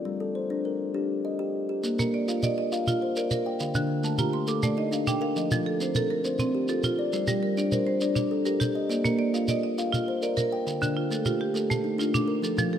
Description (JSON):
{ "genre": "southern african traditional, mbira-style interlocking cycle", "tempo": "136 BPM (dotted quarters)", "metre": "12/8", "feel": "straight", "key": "Bb major", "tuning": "A4 = 440 Hz", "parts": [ { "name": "kalimba", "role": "arpeggios", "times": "0.1-12.8 s", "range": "D3 to G5", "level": "-27 LUFS", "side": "left 2 dB", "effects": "none" }, { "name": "shekere", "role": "percussion", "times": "1.8-12.7 s", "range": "none", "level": "-31 LUFS", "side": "right 1 dB", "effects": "none" }, { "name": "marimba with hard mallets", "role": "arpeggios", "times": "2.0-12.8 s", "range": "D3 to D6", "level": "-29 LUFS", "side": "right 6 dB", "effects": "none" } ], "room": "moderate lush hall reverb, RT60 2.3 s", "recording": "rough home demo mix", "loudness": "-24 LUFS", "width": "side -9 dB against mid", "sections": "0.0-1.8 A section; 1.8-12.8 A section", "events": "marimba fill 3.9-5.4", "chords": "0.1 Gm; 1.8 Bb; 3.6 Dm; 5.4 F; 7.1 Gm; 8.9 Bb; 10.7 Dm" }